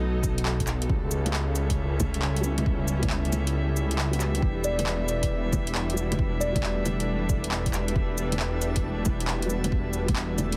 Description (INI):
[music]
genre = future garage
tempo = 136 BPM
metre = 4/4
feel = swing 66% on 16ths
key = E dorian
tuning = A4 = 440 Hz
[part]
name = kalimba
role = melody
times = 0.0-0.2, 4.6-6.8 s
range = F#4 to D5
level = -37 LUFS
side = equal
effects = tape echo
[part]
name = felt-muted upright piano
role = accompaniment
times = 0.0-10.6 s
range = F#3 to G4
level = -38 LUFS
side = equal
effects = sidechain pumping, analog delay
[part]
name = rich studio string section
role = sustained chords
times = 0.0-10.6 s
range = F#3 to E5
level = -35 LUFS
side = equal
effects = sidechain pumping
[part]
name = swelling detuned saw bass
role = bass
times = 0.0-10.6 s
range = E1 to C#2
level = -31 LUFS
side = equal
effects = sidechain pumping
[part]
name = deep house drum kit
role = drums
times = 0.2-10.6 s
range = bongos, cabasa, handclaps, hi-hat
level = -33 LUFS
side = equal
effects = overdrive
[part]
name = electronic kick drum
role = drums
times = 0.2-10.1 s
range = none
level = -31 LUFS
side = equal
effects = overdrive
[part]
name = backwards swelling texture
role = texture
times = 6.3-10.6 s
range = A3 to A4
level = -44 LUFS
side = equal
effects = none
[sound]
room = studio reverb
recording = heavily compressed radio sound, multiband compression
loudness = -27 LUFS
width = mono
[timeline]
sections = 0.0-10.6 A section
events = kick drops out 3.5-4.4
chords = 0.0 B7; 0.9 A7/C#; 4.4 Em7